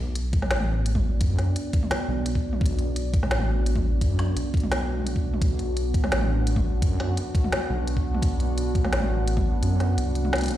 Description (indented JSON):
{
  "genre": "half-time drum and bass",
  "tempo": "171 BPM",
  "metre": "4/4",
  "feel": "swing 53% on 16ths, half-time",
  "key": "B minor",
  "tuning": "A4 = 436 Hz",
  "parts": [
    { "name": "deep dark ambient pad", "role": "sustained chords", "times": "0.0-10.6 s", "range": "B3 to F#5", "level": "-30 LUFS", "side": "right 1 dB", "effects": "chorus, built-in reverb, vintage 12-bit sampler grit, sidechain pumping" },
    { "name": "dark detuned saw bass", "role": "bass", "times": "0.0-10.6 s", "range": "A1 to F#2", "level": "-25 LUFS", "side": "equal", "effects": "none" },
    { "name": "organic electronic drum kit", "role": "drums", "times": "0.2-10.6 s", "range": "hi-hat, snare drum, toms", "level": "-30 LUFS", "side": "equal", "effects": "studio reverb" },
    { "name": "electronic kick drum", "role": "drums", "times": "0.3-9.4 s", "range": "none", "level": "-24 LUFS", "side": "equal", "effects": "studio reverb" }
  ],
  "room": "little or no reverb",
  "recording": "played on a big sound system in a bare room, stone room reverb",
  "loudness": "-22 LUFS",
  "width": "side -13 dB against mid",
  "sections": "0.0-10.6 A section",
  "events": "kick drops out 9.6-10.6",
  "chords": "0.0 Bm",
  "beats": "0.15 0.51 0.86 | 1.21 1.56 1.91 2.26 | 2.61 2.96 3.31 3.66 | 4.01 4.37 4.72 5.07 | 5.42 5.77 6.12 6.47 | 6.82 7.17 7.52 7.87 | 8.22 8.58 8.93 9.28 | 9.63 9.98 10.33"
}